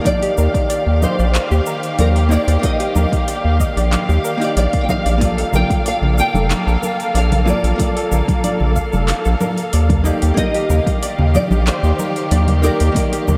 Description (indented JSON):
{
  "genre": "sunset chillout",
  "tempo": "93 BPM",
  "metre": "4/4",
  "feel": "straight",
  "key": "unclear",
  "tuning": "A4 = 440 Hz",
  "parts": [
    { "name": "archtop guitar, miked and amplified", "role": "accompaniment", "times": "0.0-13.4 s", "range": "Bb3 to Eb5", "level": "-28 LUFS", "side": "equal", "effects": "diffuse ambient delay" },
    { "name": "muted studio string section", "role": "sustained chords", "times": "0.0-13.4 s", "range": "Eb3 to F5", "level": "-26 LUFS", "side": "equal", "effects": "none" },
    { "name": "soft round pluck", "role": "arpeggios", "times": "0.0-13.4 s", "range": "G4 to F5", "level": "-29 LUFS", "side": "equal", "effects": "chorus, cassette tape, diffuse ambient delay" },
    { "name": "nylon-string guitar", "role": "melody", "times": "0.1-13.4 s", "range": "Bb4 to G5", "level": "-26 LUFS", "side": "equal", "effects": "ensemble chorus, diffuse ambient delay" },
    { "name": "deep house drum kit", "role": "drums", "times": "0.1-13.4 s", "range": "congas, handclaps, hi-hat, shaker", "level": "-27 LUFS", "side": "equal", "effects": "overdrive" },
    { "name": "electronic kick drum", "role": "drums", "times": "0.1-13.1 s", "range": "none", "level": "-22 LUFS", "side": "equal", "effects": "overdrive" },
    { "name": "round analog bass", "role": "bass", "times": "0.4-13.4 s", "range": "F1 to Eb2", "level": "-17 LUFS", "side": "equal", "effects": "none" },
    { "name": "congas", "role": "percussion", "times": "5.2-13.4 s", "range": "none", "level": "-27 LUFS", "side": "equal", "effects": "none" }
  ],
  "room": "moderate huge ambient reverb, RT60 7.9 s",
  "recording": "dreamy mix soaked in reverb",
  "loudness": "-16 LUFS",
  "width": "mono",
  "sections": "0.0-13.4 A section",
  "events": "none",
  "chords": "0.0 Ebmaj7; 5.2 Bbmaj7; 10.1 Ebmaj7",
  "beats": "| 0.05 0.70 1.34 1.99 | 2.63 3.28 3.92 4.57 | 5.21 5.86 6.50 7.15 | 7.79 8.44 9.09 9.73 | 10.38 11.02 11.67 12.31 | 12.96"
}